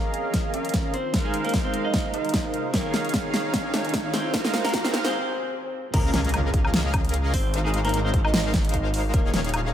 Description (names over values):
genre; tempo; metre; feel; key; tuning
future bass; 150 BPM; 4/4; swing 54% on 16ths, half-time; Ab major; A4 = 439 Hz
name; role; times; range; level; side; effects
shimmering ambient pad; sustained chords; 0.1-5.1 s; C3 to F4; -40 LUFS; right 1 dB; none
big bright polysynth; riff; 0.0-9.7 s; Eb3 to F5; -28 LUFS; right 1 dB; chorus, sidechain pumping
riser and impact; sound effects; 2.1-7.5 s; none; -35 LUFS; right 1 dB; none
big-room dance drum kit; drums; 0.1-9.6 s; crash cymbal, hi-hat, snare drum, woodblock; -27 LUFS; equal; none
electronic kick drum; drums; 0.3-9.2 s; none; -26 LUFS; equal; none
clean electric guitar; melody; 0.9-9.4 s; Ab3 to Eb5; -31 LUFS; equal; spring reverb, sidechain pumping, dub echo
wide detuned saw bass; bass; 5.9-9.7 s; Eb1 to Db2; -26 LUFS; equal; chorus, sidechain pumping
room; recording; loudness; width
light reverb; high-pass filter; -22 LUFS; side -10 dB against mid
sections
0.0-5.9 A section; 5.9-9.7 B section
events
build-up 0.0-5.9; drum fill 0.0-5.1; filter sweep on analog polysynth 0.0-5.9; filter sweep 0.0-5.9; break 5.1-5.9; drop 5.9-9.7; impact 5.9-7.5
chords
0.0 Db69; 0.9 Ab69; 2.7 Eb9sus4; 4.3 Ab69; 5.9 Db69; 7.3 Ab69; 9.1 Eb9sus4